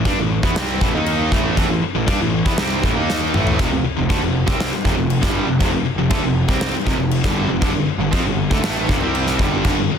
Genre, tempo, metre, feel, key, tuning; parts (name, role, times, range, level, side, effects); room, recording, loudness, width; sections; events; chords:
hard rock; 119 BPM; 4/4; straight; A minor; A4 = 440 Hz
distorted electric guitar; riff; 0.0-9.9 s; F2 to D#4; -22 LUFS; right 11 dB; overdrive
scooped high-gain guitar; riff; 0.0-9.9 s; F2 to D#4; -22 LUFS; left 10 dB; distortion
fuzz picked electric bass; bass; 0.0-9.9 s; F1 to G2; -24 LUFS; equal; overdrive
huge arena drum kit; drums; 0.1-9.8 s; crash cymbal, kick drum, snare drum, toms; -20 LUFS; left 1 dB
small room ambience; dense, heavily limited modern master; -16 LUFS; side -7 dB against mid
0.0-10.0 A section
drum fill 3.1-3.6
0.0 Am; 3.6 F5; 7.6 G5